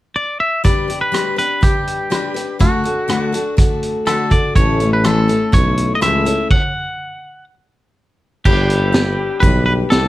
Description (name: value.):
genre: honky-tonk and classic country.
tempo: 123 BPM.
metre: 4/4.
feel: straight.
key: G major.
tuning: A4 = 440 Hz.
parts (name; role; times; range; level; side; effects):
twangy electric guitar; melody; 0.2-10.1 s; F#4 to F#5; -19 LUFS; equal; none.
picked steel-string acoustic guitar; accompaniment; 0.6-10.1 s; A2 to B4; -20 LUFS; left 4 dB; none.
vintage drum kit; drums; 0.6-10.0 s; crash cymbal, hi-hat, kick drum, rim click, snare drum; -16 LUFS; right 1 dB; none.
breathy tuba; bass; 4.6-10.1 s; G1 to C#2; -18 LUFS; equal; none.
pedal steel guitar; sustained chords; 8.5-10.1 s; G4 to D5; -28 LUFS; right 2 dB; none.
room: light reverb.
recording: close, detailed microphones.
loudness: -13 LUFS.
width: side -16 dB against mid.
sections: 0.6-8.4 A section; 8.4-10.1 B section.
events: stop 6.5-8.4.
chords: 0.0 N.C.; 0.6 G; 2.6 D; 4.6 A; 6.5 N.C.; 8.4 G.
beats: 0.16 | 0.65 1.14 1.62 2.11 | 2.60 3.09 3.58 4.06 | 4.55 5.04 5.53 6.01 | 6.50 6.99 7.48 7.96 | 8.45 8.94 9.42 9.91.